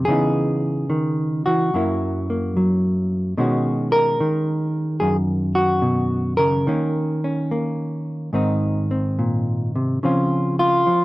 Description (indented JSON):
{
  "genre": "solo jazz",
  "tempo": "72 BPM",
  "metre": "4/4",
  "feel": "swing 67% on 8ths, rubato",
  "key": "unclear",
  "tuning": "A4 = 440 Hz",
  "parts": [
    { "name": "hollow-body jazz guitar", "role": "solo", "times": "0.0-11.0 s", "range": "Gb2 to Bb4", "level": "-18 LUFS", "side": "equal", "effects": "none" }
  ],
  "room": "light reverb",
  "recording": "close, detailed microphones",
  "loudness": "-18 LUFS",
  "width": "side -18 dB against mid",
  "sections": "0.0-11.0 A section",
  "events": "none",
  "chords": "0.1 Dbm9; 1.7 Gb7; 3.4 B69; 6.7 Eb5; 8.3 Ab; 10.0 Dbmaj7"
}